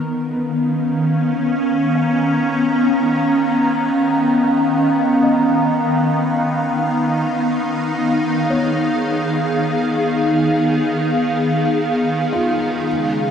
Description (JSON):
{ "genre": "ambient", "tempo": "free time", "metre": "none", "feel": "none", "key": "Db mixolydian", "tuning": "A4 = 439 Hz", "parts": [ { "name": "evolving wavetable pad", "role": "sustained chords", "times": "0.0-13.3 s", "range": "Eb3 to Bb5", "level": "-15 LUFS", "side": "equal", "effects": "ensemble chorus, built-in reverb" }, { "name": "felt-muted upright piano", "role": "arpeggios", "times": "0.3-13.3 s", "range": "F4 to F5", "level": "-32 LUFS", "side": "equal", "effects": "none" }, { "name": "bowed-like drone", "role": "drone", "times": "13.0-13.3 s", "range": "Db3 to Ab3", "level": "-25 LUFS", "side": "right 1 dB", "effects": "built-in reverb" } ], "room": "wet huge ambient reverb, RT60 7.7 s", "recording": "dark, warm production", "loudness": "-15 LUFS", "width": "side -8 dB against mid", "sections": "0.0-13.3 A section", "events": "none", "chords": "0.0 Db13", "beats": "free time" }